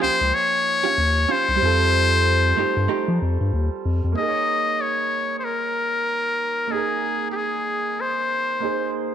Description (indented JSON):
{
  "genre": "R&B",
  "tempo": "94 BPM",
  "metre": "4/4",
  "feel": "swing 58% on 16ths",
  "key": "Bb dorian",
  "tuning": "A4 = 439 Hz",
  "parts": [
    { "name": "trumpet with metal mute", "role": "melody", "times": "0.0-9.0 s", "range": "G4 to Eb5", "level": "-21 LUFS", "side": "left 3 dB", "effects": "slapback echo" },
    { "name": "vintage hollow-body jazz guitar", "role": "second line", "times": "0.0-3.1 s", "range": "A3 to G4", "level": "-28 LUFS", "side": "right 10 dB", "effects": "none" },
    { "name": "clear concert grand piano", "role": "accompaniment", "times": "0.0-9.1 s", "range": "F3 to G5", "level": "-28 LUFS", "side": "right 9 dB", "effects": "none" },
    { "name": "round analog bass", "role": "bass", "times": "0.0-4.2 s", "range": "C2 to F3", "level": "-21 LUFS", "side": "left 1 dB", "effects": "none" }
  ],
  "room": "moderate spring reverb, RT60 2.1 s",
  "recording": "1960s-style stereo",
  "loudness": "-19 LUFS",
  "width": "side -9 dB against mid",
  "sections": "0.0-4.2 A section; 4.2-9.1 B section",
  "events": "none",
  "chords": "0.0 Eb9; 1.6 Fadd9; 4.2 Bbm7; 8.6 Abadd9"
}